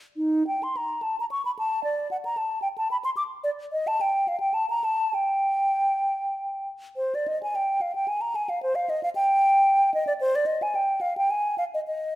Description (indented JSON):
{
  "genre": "classical, baroque-style fantasia for unaccompanied flute",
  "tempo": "95-115 BPM",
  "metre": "3/4",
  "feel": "rubato",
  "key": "G minor",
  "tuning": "A4 = 440 Hz",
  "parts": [
    { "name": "mellow hollow silver concert flute", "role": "solo", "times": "0.2-12.2 s", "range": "Eb4 to D6", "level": "-23 LUFS", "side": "equal", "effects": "none" }
  ],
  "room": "wet recital hall reverb, RT60 1.3 s",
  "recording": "none",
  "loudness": "-23 LUFS",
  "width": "side -16 dB against mid",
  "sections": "0.0-7.0 A section; 7.0-12.2 A section",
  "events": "none",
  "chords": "none"
}